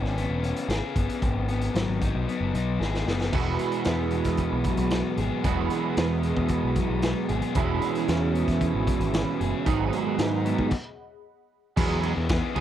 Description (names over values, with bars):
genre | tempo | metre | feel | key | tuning
indie rock | 114 BPM | 4/4 | straight | E major | A4 = 440 Hz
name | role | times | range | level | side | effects
raw garage guitar | riff | 0.0-12.6 s | E2 to G#4 | -30 LUFS | left 5 dB | overdrive
growling picked electric bass | bass | 0.0-12.6 s | E1 to G#2 | -28 LUFS | equal | overdrive
raw garage drum kit | drums | 0.0-12.6 s | crash cymbal, hi-hat, kick drum, ride cymbal, snare drum | -29 LUFS | equal | none
electric guitar at the edge of break-up | riff | 3.3-12.6 s | E2 to G#4 | -27 LUFS | right 7 dB | analog chorus, slapback echo
phased analog pad | sustained chords | 7.5-12.6 s | G#4 to B5 | -39 LUFS | left 3 dB | phaser, chorus
room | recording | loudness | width
small room ambience | dry, close 1970s-style studio recording | -23 LUFS | side -11 dB against mid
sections
0.0-3.3 A section; 3.3-11.8 B section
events
drum fill 2.8-3.3; stop 10.7-11.8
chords
0.0 C#m7/E; 1.2 G#m7; 3.3 Eadd9; 7.6 C#m7/E; 9.7 G#m7; 11.8 Eadd9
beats
0.16 0.69 | 1.22 1.75 2.27 2.80 | 3.33 3.86 4.39 4.92 | 5.44 5.97 6.50 7.03 | 7.55 8.08 8.61 9.13 | 9.66 10.19 10.72 11.24 | 11.77 12.29